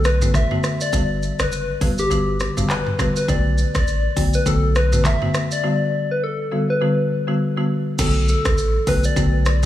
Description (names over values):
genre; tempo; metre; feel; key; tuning
afrobeats; 102 BPM; 4/4; swing 58% on 16ths; B minor; A4 = 440 Hz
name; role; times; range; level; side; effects
soft struck synth lead; melody; 0.0-9.7 s; G4 to E5; -23 LUFS; left 2 dB; chorus, tremolo, tape echo
punchy sub bass; bass; 0.0-9.7 s; F#1 to B1; -20 LUFS; equal; none
afro-pop drum kit; drums; 0.0-9.7 s; crash cymbal, handclaps, hi-hat, kick drum, rim click, shaker, toms; -23 LUFS; equal; none
folk marimba with medium mallets; accompaniment; 0.2-9.7 s; D3 to F#4; -22 LUFS; left 1 dB; none
room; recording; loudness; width
digital ambience; studio ambience; -17 LUFS; side -13 dB against mid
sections
0.0-8.0 A section; 8.0-9.7 B section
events
break 5.6-8.0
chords
0.0 Bm7; 0.9 Gmaj7; 3.3 Bm7; 5.6 Gmaj7; 8.0 Bm7